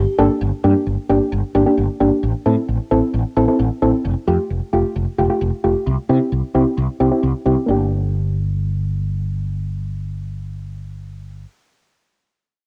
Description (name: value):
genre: synth-pop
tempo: 132 BPM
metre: 4/4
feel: straight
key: G dorian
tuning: A4 = 438 Hz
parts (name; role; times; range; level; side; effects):
- mellow fretless electric bass; bass; 0.0-11.4 s; F1 to C3; -22 LUFS; equal; ensemble chorus
- soft round pluck; accompaniment; 0.2-11.5 s; A3 to A4; -20 LUFS; equal; chorus, low-pass filter, cassette tape, plate reverb
room: wet studio reverb, RT60 0.5 s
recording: home recording on cassette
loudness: -19 LUFS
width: mono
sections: 0.4-7.7 A section; 7.7-11.3 B section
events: none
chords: 0.4 Gm; 2.2 Am; 4.0 Fadd9; 5.9 C; 7.7 Gm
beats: | 0.41 0.87 1.32 1.77 | 2.23 2.68 3.14 3.59 | 4.05 4.50 4.96 5.41 | 5.87 6.32 6.78 7.23 | 7.68 8.14 8.59 9.05 | 9.50 9.96 10.41 10.87